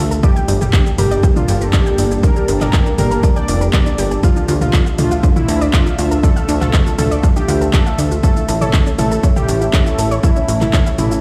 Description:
melodic techno; 120 BPM; 4/4; straight; D harmonic minor; A4 = 441 Hz
fat analog lead; melody; 0.0-11.2 s; E4 to D5; -24 LUFS; equal; analog chorus, tape echo
lush unison pad; sustained chords; 0.0-11.2 s; D3 to E5; -27 LUFS; equal; chorus, sidechain pumping
soft round pluck; arpeggios; 0.0-11.2 s; C#4 to G6; -28 LUFS; equal; chorus, sidechain pumping, dub echo
plucky analog bass; bass; 0.0-11.2 s; F1 to D2; -19 LUFS; equal; sidechain pumping
deep dark ambient pad; texture; 0.0-11.2 s; D4 to A5; -29 LUFS; equal; chorus, built-in reverb, sidechain pumping
deep house drum kit; drums; 0.1-11.2 s; handclaps, hi-hat, shaker, toms; -25 LUFS; equal; overdrive, sidechain pumping on perc, sidechain pumping on hats, sidechain pumping on toms, sidechain pumping on cymbals
electronic kick drum; drums; 0.2-10.8 s; -17 LUFS; equal
digital ambience; played on a big sound system in a bare room, stone room reverb; -15 LUFS; mono
0.0-11.2 A section
0.2 Gm; 4.2 Dm; 8.2 A

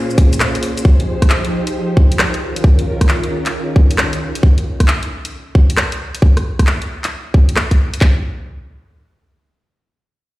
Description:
UK garage, two-step garage; 134 BPM; 4/4; swing 66% on 16ths; A4 = 440 Hz
soft string machine; sustained chords; 0.0-4.4 s; Bb2 to C5; -21 LUFS; equal; ensemble chorus, sidechain pumping
garage drum kit; drums; 0.1-8.0 s; handclaps, hi-hat, rim click, shaker; -20 LUFS; equal
garage drum kit; drums; 0.2-8.2 s; handclaps, kick drum; -10 LUFS; equal
light reverb; played on a big sound system in a bare room, large studio reverb; -12 LUFS; side -18 dB against mid
0.0-8.0 A section; 8.0-10.4 B section
0.0 Bbm9; 0.8 Fm7; 2.4 Eb9sus4; 4.2 Db6; 6.2 N.C.

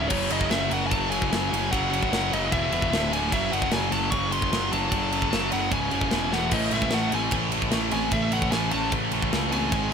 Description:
heavy metal; 150 BPM; 4/4; straight; A4 = 445 Hz
high-gain lead guitar; melody; 0.0-9.9 s; C#5 to C#6; -29 LUFS; left 1 dB; distortion
thick fuzz guitar; riff; 0.0-9.9 s; C#2 to A3; -32 LUFS; right 1 dB; distortion
tight distorted guitar; riff; 0.0-9.9 s; C#2 to A3; -29 LUFS; left 17 dB; distortion
tight distorted guitar; riff; 0.0-9.9 s; C#2 to A3; -30 LUFS; right 19 dB; distortion
fuzz picked electric bass; bass; 0.0-9.9 s; C#1 to C#2; -31 LUFS; equal; overdrive
tight metal drum kit; drums; 0.1-9.8 s; crash cymbal, kick drum, ride cymbal, snare drum; -28 LUFS; equal
bluesy overdriven lead guitar; second line; 5.7-9.9 s; G#3 to C#4; -33 LUFS; right 5 dB; distortion
little or no reverb; -22 LUFS; side -6 dB against mid
0.1-9.9 A section
drum fill 6.3
0.1 F#5; 2.5 E5; 2.9 D5; 3.3 F#m; 5.7 C#5; 6.1 E5; 6.5 A5

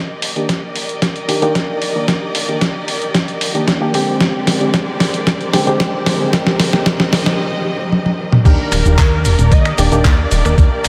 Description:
nu-disco, nu disco; 113 BPM; 4/4; straight; Eb major; A4 = 439 Hz
warm studio violin section; sustained chords; 0.0-10.9 s; Ab3 to Eb5; -26 LUFS; equal; sidechain pumping
dusty soul sampler-style drum kit; drums; 0.2-10.9 s; cabasa, crash cymbal, finger snaps, handclaps, hi-hat, snare drum, toms; -19 LUFS; equal
barky reed electric piano; accompaniment; 0.4-10.6 s; D3 to Bb4; -22 LUFS; equal; lush chorus, tape echo
electronic kick drum; drums; 0.5-10.7 s; -15 LUFS; equal; high-pass filter on kick, high-pass filter on room
unison lead; melody; 8.5-10.9 s; Bb4 to Eb5; -24 LUFS; equal; ensemble chorus, analog delay
chorused synth bass; bass; 8.5-10.9 s; Eb1 to Eb2; -16 LUFS; equal
wet cathedral reverb, RT60 7.3 s; dreamy mix soaked in reverb; -15 LUFS; mono
0.0-8.5 A section; 8.5-10.9 B section
build-up 0.0-8.5; drum fill 0.0-7.4, 7.9-8.5; drop 8.5-10.9
0.0 Ebmaj7; 3.9 Bb13/D; 6.3 Cm7; 8.5 Ebmaj7

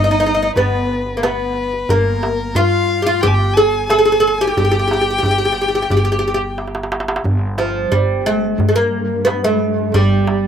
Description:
Arabic maqam ensemble; 90 BPM; 4/4; straight; G maqam saba; A4 = 439 Hz
oud; melody; 0.0-10.5 s; F3 to Ab4+50c; -16 LUFS; equal; slapback echo
rich violin; second line; 0.0-6.6 s; Bb4 to Ab5+47c; -22 LUFS; left 4 dB; slapback echo
upright bass; bass; 0.0-10.5 s; G1 to G2; -25 LUFS; equal
darbuka; percussion; 0.0-10.4 s; -19 LUFS; right 1 dB
dark studio cello section; drone; 7.2-10.5 s; G2; -24 LUFS; right 2 dB; stereo widening
little or no reverb; recorded outdoors, with no room sound; -14 LUFS; side -8 dB against mid
0.0-7.3 A section; 7.3-10.5 B section
drum fill 6.6-7.3

